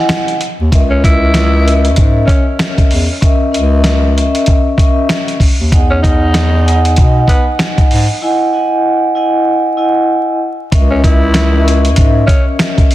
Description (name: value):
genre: hip hop, boom-bap hip-hop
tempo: 96 BPM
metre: 4/4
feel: swing 61% on 16ths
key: C# dorian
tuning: A4 = 440 Hz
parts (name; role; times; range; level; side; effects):
- vibraphone with soft mallets; accompaniment; 0.0-12.9 s; C#4 to G#5; -14 LUFS; equal; high-pass filter, low-pass filter
- dusty soul sampler-style drum kit; drums; 0.1-12.9 s; hi-hat, kick drum, snare drum; -12 LUFS; equal; none
- mellow bass clarinet; bass; 0.6-12.9 s; C#2 to B2; -12 LUFS; equal; none
- growling tenor saxophone; melody; 0.9-12.4 s; B3 to E4; -19 LUFS; equal; high-pass filter, low-pass filter, ping-pong delay
- finger snap; percussion; 11.4-12.8 s; none; barely audible; none; none
room: light reverb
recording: dense, heavily limited modern master, vinyl crackle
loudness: -9 LUFS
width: side -15 dB against mid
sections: 0.0-10.7 A section; 10.7-12.9 B section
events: break 0.0-0.7, 8.2-10.7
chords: 0.0 Emaj9; 0.7 C#m69; 5.7 Emaj9; 10.7 C#m69